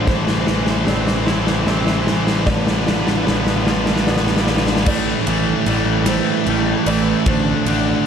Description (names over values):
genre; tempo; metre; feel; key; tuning
post-rock; 50 BPM (dotted quarters); 6/8; straight; A minor; A4 = 440 Hz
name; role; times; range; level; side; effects
felt-muted upright piano; arpeggios; 0.0-8.1 s; B4 to E5; -30 LUFS; right 3 dB; slapback echo
twangy electric guitar; arpeggios; 0.0-8.1 s; A2 to F4; -28 LUFS; left 3 dB; wide subtle chorus, slapback echo
sludgy distorted guitar; riff; 0.0-8.1 s; A2 to C5; -21 LUFS; right 11 dB; overdrive
tight distorted guitar; riff; 0.0-8.1 s; A2 to D4; -22 LUFS; left 12 dB; distortion
fuzz picked electric bass; bass; 0.0-7.9 s; A1; -22 LUFS; equal; overdrive
huge arena drum kit; drums; 0.1-7.9 s; crash cymbal, kick drum, ride cymbal, snare drum; -20 LUFS; left 1 dB; none
room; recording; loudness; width
light reverb, small room ambience; dark, warm production; -15 LUFS; side -7 dB against mid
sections
0.0-4.9 A section; 4.9-8.1 B section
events
build-up 0.0-4.9; drum fill 0.0-4.9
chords
0.1 C6/A; 2.5 Bm7b5/A; 4.9 Am7; 7.3 D7(no3)/A